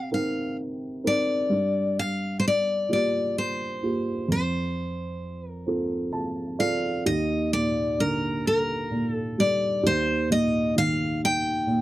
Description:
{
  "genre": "acoustic folk-pop ballad",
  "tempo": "43 BPM (dotted quarters)",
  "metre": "6/8",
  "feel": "straight",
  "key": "unclear",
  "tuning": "A4 = 440 Hz",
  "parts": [
    { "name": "picked steel-string acoustic guitar", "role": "melody", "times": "0.0-11.8 s", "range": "Bb4 to G5", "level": "-26 LUFS", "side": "left 1 dB", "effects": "none" },
    { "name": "dark upright piano", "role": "accompaniment", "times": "0.0-11.8 s", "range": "Eb2 to A5", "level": "-26 LUFS", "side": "right 1 dB", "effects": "none" }
  ],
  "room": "light reverb",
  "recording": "dry, close 1970s-style studio recording, faint mains hum",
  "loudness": "-23 LUFS",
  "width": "side -15 dB against mid",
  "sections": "0.0-7.1 A section; 7.1-11.8 B section",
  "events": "none",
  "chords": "0.0 Cm7; 1.5 Gm7; 4.3 F; 7.1 Ebmaj7; 9.8 Eb69"
}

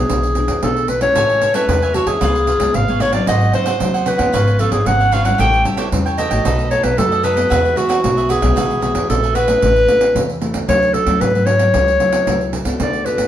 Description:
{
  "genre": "samba and choro",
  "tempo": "113 BPM",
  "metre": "4/4",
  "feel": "straight",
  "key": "A major",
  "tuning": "A4 = 440 Hz",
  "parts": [
    { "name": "warm clarinet", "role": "melody", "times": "0.0-13.3 s", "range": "F#4 to G5", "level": "-16 LUFS", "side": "equal", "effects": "none" },
    { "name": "nylon-string guitar", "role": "accompaniment", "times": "0.0-13.3 s", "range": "G#2 to A4", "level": "-23 LUFS", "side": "left 2 dB", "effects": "none" },
    { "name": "upright bass", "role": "bass", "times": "0.0-13.3 s", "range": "G#1 to G#2", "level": "-20 LUFS", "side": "equal", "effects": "none" },
    { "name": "pandeiro", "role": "percussion", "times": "0.1-13.3 s", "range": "none", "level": "-22 LUFS", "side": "right 3 dB", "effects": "none" },
    { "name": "cavaquinho", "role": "accompaniment", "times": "1.1-9.6 s", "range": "D#4 to G#5", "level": "-24 LUFS", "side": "right 3 dB", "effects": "none" }
  ],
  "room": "wet stone room reverb, RT60 0.9 s",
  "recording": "band playing live in one room",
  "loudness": "-13 LUFS",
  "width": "side -11 dB against mid",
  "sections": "0.0-9.6 A section; 9.6-13.3 A section",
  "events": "none",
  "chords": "0.0 E7; 1.2 Amaj7; 2.2 C#7; 3.3 G#7; 4.3 C#7/G#; 5.4 A7; 6.5 B7; 7.5 Eadd9; 9.6 A; 10.7 Dmaj7; 11.7 F#m7/C#"
}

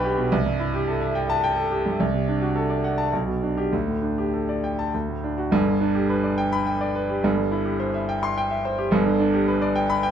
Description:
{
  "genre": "classical, virtuoso piano study",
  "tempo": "106 BPM",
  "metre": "3/4",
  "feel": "rubato",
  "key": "G major",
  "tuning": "A4 = 445 Hz",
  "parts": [
    { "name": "clear concert grand piano", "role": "solo", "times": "0.0-10.1 s", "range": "G1 to C6", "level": "-21 LUFS", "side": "equal", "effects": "none" }
  ],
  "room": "moderate stone room reverb, RT60 1.2 s",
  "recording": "none",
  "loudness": "-21 LUFS",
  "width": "side -8 dB against mid",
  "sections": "0.0-5.5 A section; 5.5-10.1 B section",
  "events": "none",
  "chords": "0.3 Am7/C; 2.0 D7/C; 3.1 G/B; 3.7 Dsus4; 4.9 D; 5.5 G; 7.2 C/G; 8.9 G"
}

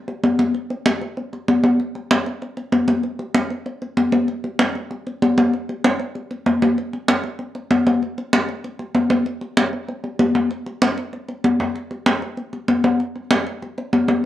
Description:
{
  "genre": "jazz",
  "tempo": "193 BPM",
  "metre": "4/4",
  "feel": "straight",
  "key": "none",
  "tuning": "none",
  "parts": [
    { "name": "congas", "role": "percussion", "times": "0.1-14.2 s", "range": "none", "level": "-18 LUFS", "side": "left 1 dB", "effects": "none" }
  ],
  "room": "moderate studio reverb, RT60 0.8 s",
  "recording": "worn, warbling old tape, cassette tape, warbly pitch drift",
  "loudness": "-18 LUFS",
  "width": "side -13 dB against mid",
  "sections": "0.0-4.3 A section; 4.3-14.2 B section",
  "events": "none",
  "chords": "none"
}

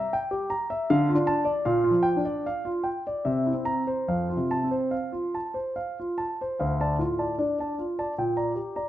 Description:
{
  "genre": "classical, baroque-style suite movement for grand piano",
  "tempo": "70-79 BPM",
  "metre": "3/4",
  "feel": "rubato",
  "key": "F major",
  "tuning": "A4 = 440 Hz",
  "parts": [
    { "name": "warm concert grand piano", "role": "solo", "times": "0.0-8.9 s", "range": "D2 to Bb5", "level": "-24 LUFS", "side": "equal", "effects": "none" }
  ],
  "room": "moderate recital hall reverb, RT60 1.3 s",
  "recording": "close, detailed microphones",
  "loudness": "-24 LUFS",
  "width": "side -13 dB against mid",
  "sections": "0.0-6.6 A section; 6.6-8.9 A section",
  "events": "none",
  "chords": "0.0 C7 (rootless); 0.9 Dm; 1.7 Gm7/Bb; 3.3 C7; 4.1 F; 6.6 Dm; 8.2 Gm/Bb"
}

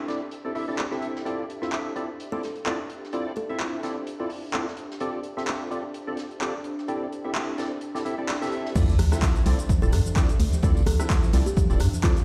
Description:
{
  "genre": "piano house",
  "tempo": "128 BPM",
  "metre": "4/4",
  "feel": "swing 55% on 16ths",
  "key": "D minor",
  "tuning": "A4 = 440 Hz",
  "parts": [
    { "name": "percussive organ stab", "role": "riff", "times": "0.0-12.2 s", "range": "C4 to E5", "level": "-33 LUFS", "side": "equal", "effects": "ensemble chorus, sidechain pumping, digital delay" },
    { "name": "ethereal airy pad", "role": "texture", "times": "0.0-12.2 s", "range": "D4 to E5", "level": "-40 LUFS", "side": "equal", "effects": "ensemble chorus, built-in reverb, sidechain pumping" },
    { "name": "soft-mallet drum kit", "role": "drums", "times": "0.1-12.2 s", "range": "hi-hat, snare drum", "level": "-48 LUFS", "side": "equal", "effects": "high-pass filter on hats, low-pass filter on hats, high-pass filter on snare, low-pass filter on snare, high-pass filter on room, low-pass filter on room" },
    { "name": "punchy analog drum machine", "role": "drums", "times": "0.8-12.2 s", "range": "crash cymbal, handclaps, hi-hat, rim click, shaker", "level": "-35 LUFS", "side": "equal", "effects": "low-pass filter on snare, low-pass filter on hats, low-pass filter on cymbals, low-pass filter on perc, low-pass filter on room" },
    { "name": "kalimba", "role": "melody", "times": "2.3-3.9, 9.8-12.2 s", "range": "F4 to A4", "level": "-37 LUFS", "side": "equal", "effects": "digital delay" },
    { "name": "organ-like FM bass", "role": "bass", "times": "8.8-11.9 s", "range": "D1 to G2", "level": "-25 LUFS", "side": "equal", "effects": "sidechain pumping" },
    { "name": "electronic kick drum", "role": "drums", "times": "8.8-12.1 s", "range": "none", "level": "-25 LUFS", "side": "equal", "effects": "none" },
    { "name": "tambourine and congas", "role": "percussion", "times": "8.8-12.1 s", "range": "none", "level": "-37 LUFS", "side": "equal", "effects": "none" },
    { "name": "sub drop", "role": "sound effects", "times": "8.8-10.6 s", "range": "none", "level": "-30 LUFS", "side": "equal", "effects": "none" }
  ],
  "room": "light reverb, small room reverb",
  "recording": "played on a big sound system in a bare room, stone room reverb",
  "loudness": "-26 LUFS",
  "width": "mono",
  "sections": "0.0-8.8 A section; 8.8-12.2 B section",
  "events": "drop 8.8-12.2; impact 8.8-10.6",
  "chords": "0.0 C69; 1.3 Dm9; 6.6 C69; 8.8 Dm9"
}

